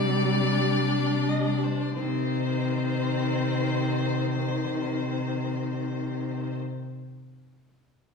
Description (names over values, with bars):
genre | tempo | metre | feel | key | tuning
classical, slow romantic movement for string quartet | 29 BPM (dotted quarters) | 6/8 | rubato | C minor | A4 = 439 Hz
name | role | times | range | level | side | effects
rich violin | melody | 0.0-6.5 s | C5 to Eb5 | -32 LUFS | left 5 dB | none
warm violin | second line | 0.0-6.5 s | C4 to D4 | -34 LUFS | left 5 dB | none
warm viola | accompaniment | 0.0-6.5 s | Eb3 to G3 | -31 LUFS | equal | none
warm cello | bass | 0.0-6.5 s | C3 | -28 LUFS | equal | none
room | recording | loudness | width
wet recital hall reverb, RT60 1.4 s | heard from further back in the room, small room ambience | -24 LUFS | side -4 dB against mid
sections
0.0-1.9 A section; 1.9-6.0 B section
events
slowing down 0.0-1.9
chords
0.0 C5; 1.9 Cm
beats
| 1.94 3.98